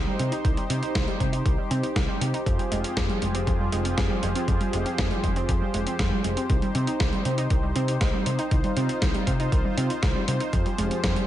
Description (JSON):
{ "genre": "italo disco", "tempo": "119 BPM", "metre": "4/4", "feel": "straight", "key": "F minor", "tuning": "A4 = 440 Hz", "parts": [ { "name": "warm analog pad", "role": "sustained chords", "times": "0.0-11.3 s", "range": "F3 to C5", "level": "-30 LUFS", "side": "left 1 dB", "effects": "chorus, tremolo" }, { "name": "wide unison pluck", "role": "arpeggios", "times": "0.0-11.3 s", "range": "Eb3 to Eb4", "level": "-30 LUFS", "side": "right 2 dB", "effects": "cassette tape, digital delay" }, { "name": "overdriven picked electric bass", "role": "bass", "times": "0.0-11.1 s", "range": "F1 to C3", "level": "-28 LUFS", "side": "equal", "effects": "digital delay" }, { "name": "dusty soul sampler-style drum kit", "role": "drums", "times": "0.2-11.3 s", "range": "hi-hat, snare drum", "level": "-30 LUFS", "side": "equal", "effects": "gated reverb" }, { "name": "electronic kick drum", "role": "drums", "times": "0.4-11.1 s", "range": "none", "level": "-26 LUFS", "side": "equal", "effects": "none" } ], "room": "digital ambience", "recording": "nothing above 10.5 kHz", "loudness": "-22 LUFS", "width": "side -12 dB against mid", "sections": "0.0-11.3 A section", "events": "none", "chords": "0.0 Cm; 2.5 Fmadd9; 6.5 Cm; 10.5 Fmadd9" }